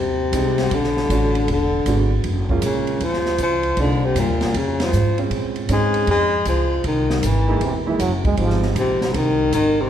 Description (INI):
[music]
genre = jazz, small-group swing and bop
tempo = 157 BPM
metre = 4/4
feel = swing 66% on 8ths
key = unclear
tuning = A4 = 435 Hz
[part]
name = warm baritone saxophone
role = melody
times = 0.0-9.9 s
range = Bb2 to Ab3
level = -20 LUFS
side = left 2 dB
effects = none
[part]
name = upright bass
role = bass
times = 0.0-9.9 s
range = E1 to Bb2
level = -22 LUFS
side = equal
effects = none
[part]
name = warm baby grand piano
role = accompaniment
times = 0.3-9.5 s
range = G3 to Ab4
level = -26 LUFS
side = right 4 dB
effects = none
[part]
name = open jazz drum kit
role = drums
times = 0.3-9.6 s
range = hi-hat, kick drum, ride cymbal, snare drum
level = -27 LUFS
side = right 1 dB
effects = none
[part]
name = trombone with plunger mute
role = second line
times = 7.6-8.7 s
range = C3 to G#3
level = -24 LUFS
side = right 2 dB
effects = none
[sound]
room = moderate concert hall reverb, RT60 2.0 s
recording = recorded in a church or concert hall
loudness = -17 LUFS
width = side -10 dB against mid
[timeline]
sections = 0.0-9.9 A section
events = band accent 4.7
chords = 0.0 Fm7 (rootless); 0.7 Bm7; 1.5 E9; 2.2 Gbmaj9; 3.8 Cm7; 4.5 Fm; 5.3 Bbm11; 6.8 C7alt; 8.4 Abmaj9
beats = 0.33 | 0.71 1.10 1.48 1.86 | 2.25 2.63 3.01 3.40 | 3.78 4.16 4.54 4.93 | 5.31 5.70 6.08 6.46 | 6.84 7.23 7.61 7.99 | 8.38 8.76 9.14 9.53